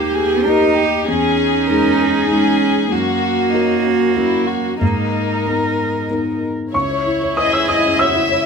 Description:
neoclassical piano and strings; 96 BPM; 3/4; rubato; A4 = 440 Hz
warm chamber violin section; melody; 0.0-8.5 s; C#4 to E5; -20 LUFS; left 5 dB
rich cello; second line; 0.0-8.5 s; G#3 to G#4; -19 LUFS; right 7 dB
felt-muted upright piano; accompaniment; 0.0-8.5 s; C#2 to E6; -19 LUFS; left 2 dB
warm viola; accompaniment; 0.0-8.5 s; D#4 to A#4; -21 LUFS; right 1 dB
moderate studio reverb, RT60 0.9 s; minimal, uncompressed stereo recording; -14 LUFS; side -6 dB against mid
0.0-6.7 A section; 6.7-8.5 B section
0.0 D#; 1.1 C#madd9/E; 2.9 F#; 4.8 G#madd9; 6.7 C#m

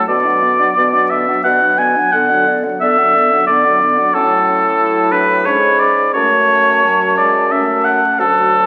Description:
classical, slow romantic movement for wind quintet; 88 BPM; 3/4; rubato; F# minor; A4 = 443 Hz
mellow hollow silver concert flute; melody; 0.0-8.7 s; D5 to B5; -26 LUFS; equal
warm oboe; second line; 0.0-8.7 s; A4 to G#5; -14 LUFS; equal
warm French horn; accompaniment; 0.0-8.7 s; D3 to A3; -30 LUFS; equal
warm clarinet; accompaniment; 0.0-8.7 s; B3 to F#4; -28 LUFS; equal
mellow bassoon; bass; 0.1-8.7 s; D2 to D3; -22 LUFS; equal
wet recital hall reverb, RT60 1.6 s; very old 78 rpm record, vinyl crackle; -13 LUFS; mono
0.0-8.7 A section
0.1 Bm; 2.1 Bm/D; 4.1 F#m/A; 6.1 F#m

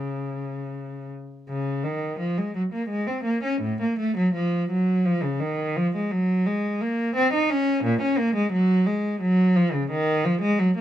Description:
classical, baroque-style suite movement for unaccompanied cello; 86 BPM; 3/4; rubato; Bb minor; A4 = 438 Hz
warm cello; solo; 0.0-10.8 s; A2 to Eb4; -22 LUFS; equal
moderate studio reverb, RT60 0.9 s; minimal, uncompressed stereo recording; -21 LUFS; side -11 dB against mid
0.0-1.5 A section; 1.5-10.8 A section

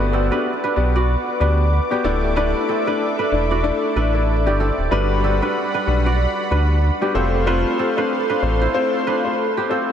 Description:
afrobeats; 94 BPM; 4/4; swing 58% on 16ths; G major; A4 = 440 Hz
clear grand piano; accompaniment; 0.0-9.9 s; G3 to D5; -22 LUFS; left 4 dB
warm analog pad; sustained chords; 0.0-9.9 s; G3 to D6; -24 LUFS; equal; chorus, tremolo
kora; riff; 0.0-9.9 s; A3 to D5; -24 LUFS; right 4 dB; analog delay
sub bass with octave; bass; 0.0-8.7 s; D1 to D2; -19 LUFS; equal
wet huge ambient reverb, RT60 4.9 s; dreamy mix soaked in reverb; -17 LUFS; side -9 dB against mid
0.0-9.9 A section
0.0 Gmaj7; 2.0 Dsus2; 4.9 Gmaj7; 7.1 F

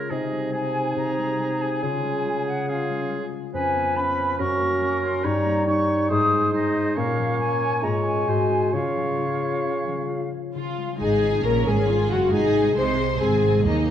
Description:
classical, dramatic, fast romantic movement for symphony orchestra; 139 BPM; 4/4; rubato; Db major; A4 = 441 Hz
clear oboe; second line; 0.0-10.3 s; Ab4 to Db5; -31 LUFS; right 3 dB
concert flute; second line; 0.0-10.3 s; Eb5 to Eb6; -27 LUFS; left 1 dB
mellow clarinet; second line; 0.0-10.3 s; Db4 to Gb4; -28 LUFS; equal
dark bassoon; accompaniment; 0.0-10.3 s; C3 to Bb3; -26 LUFS; right 2 dB
concert harp; arpeggios; 0.0-13.9 s; F2 to Db5; -30 LUFS; left 6 dB
rich symphonic viola section; accompaniment; 10.6-13.9 s; Ab3 to F4; -28 LUFS; right 2 dB
rich symphonic violin section; melody; 11.0-13.9 s; Eb5 to C6; -32 LUFS; left 3 dB
rich symphonic violin section; second line; 11.0-13.9 s; Eb4 to C5; -30 LUFS; equal
warm French horn section; sustained chords; 11.0-13.9 s; Eb4 to C5; -22 LUFS; left 4 dB
rich symphonic cello section; bass; 11.0-13.9 s; Eb2 to C3; -26 LUFS; right 3 dB
warm symphonic double bass section; bass; 11.0-13.9 s; Gb1 to Eb2; -26 LUFS; right 5 dB
wet recital hall reverb, RT60 1.5 s; dark, warm production; -20 LUFS; side -10 dB against mid
0.0-10.5 A section; 10.5-13.9 B section
0.1 Ab/C; 1.8 Db; 3.5 Db7/F; 4.4 Gb; 5.2 Eb7/G; 6.1 Ab; 7.0 Bbm; 7.8 Db/Ab; 8.3 Ab7; 8.7 Db; 12.3 Ab

